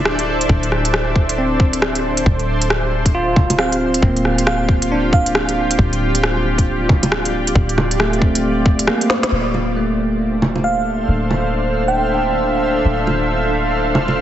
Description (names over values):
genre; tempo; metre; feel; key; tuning
future garage; 136 BPM; 4/4; swing 60% on 16ths; D minor; A4 = 441 Hz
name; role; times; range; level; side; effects
bell-like tine electric piano; accompaniment; 0.0-14.2 s; A3 to F4; -22 LUFS; right 1 dB; vintage 12-bit sampler grit, sidechain pumping, tape echo
granular cloud pad; sustained chords; 0.0-14.2 s; D4 to F5; -21 LUFS; equal; built-in reverb, vintage 12-bit sampler grit, sidechain pumping
soft 808-style bass; bass; 0.0-14.2 s; D1; -22 LUFS; equal; sidechain pumping
organic electronic drum kit; drums; 0.1-14.2 s; bongos, hi-hat, rim click, snare drum; -20 LUFS; right 1 dB; overdrive
electronic kick drum; drums; 0.5-8.8 s; none; -15 LUFS; equal; overdrive
bell-like FM electric piano; melody; 3.6-5.8, 10.6-12.3 s; F5 to G5; -23 LUFS; right 3 dB; chorus, tape echo
backwards swelling texture; texture; 10.0-14.2 s; C5; -29 LUFS; left 1 dB; built-in reverb
room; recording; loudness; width
moderate lush hall reverb, RT60 1.7 s, digital ambience; heavily compressed radio sound, multiband compression, nothing above 7.9 kHz; -14 LUFS; side -11 dB against mid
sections
0.0-9.3 A section; 9.3-14.2 B section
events
drum fill 9.1; band accent 9.2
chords
0.0 Dm7; 2.3 Fsus2/D; 9.3 Dm7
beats
0.06 | 0.50 0.94 1.38 1.82 | 2.26 2.70 3.14 3.59 | 4.03 4.47 4.91 5.35 | 5.79 6.23 6.67 7.12 | 7.56 8.00 8.44 8.88 | 9.32 9.76 10.20 10.64 | 11.09 11.53 11.97 12.41 | 12.85 13.29 13.73 14.17